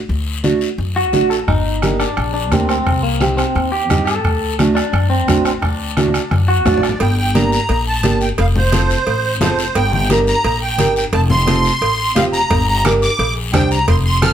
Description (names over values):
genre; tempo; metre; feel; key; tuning
latin, cumbia; 174 BPM; 4/4; straight; G minor from 7.0 s; A4 = 440 Hz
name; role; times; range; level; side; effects
upright bass; bass; 0.0-14.3 s; F1 to G2; -19 LUFS; left 1 dB; none
congas; percussion; 0.1-14.3 s; none; -22 LUFS; left 3 dB; none
guiro; percussion; 0.1-14.3 s; none; -27 LUFS; left 7 dB; none
nylon-string guitar; accompaniment; 0.4-14.3 s; A3 to C5; -19 LUFS; right 4 dB; none
clean electric guitar; melody; 1.0-6.9 s; Bb3 to A4; -20 LUFS; left 1 dB; spring reverb, slapback echo
bombo; percussion; 1.5-7.0, 12.5-14.3 s; none; -20 LUFS; right 1 dB; none
musette accordion; second line; 6.7-14.3 s; C5 to F6; -18 LUFS; right 2 dB; none
cowbell and timbales; percussion; 7.0-14.3 s; none; -24 LUFS; right 5 dB; none
room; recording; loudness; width
moderate studio reverb, RT60 1.0 s; none; -13 LUFS; side -9 dB against mid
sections
0.0-7.0 A section; 7.0-14.3 B section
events
drum fill 6.0-7.0; accordion solo 7.0-14.3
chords
0.0 D; 1.5 Gm; 2.9 Cm; 4.2 D; 7.0 Gm; 8.4 F; 9.8 Gm; 11.1 F; 12.5 Gm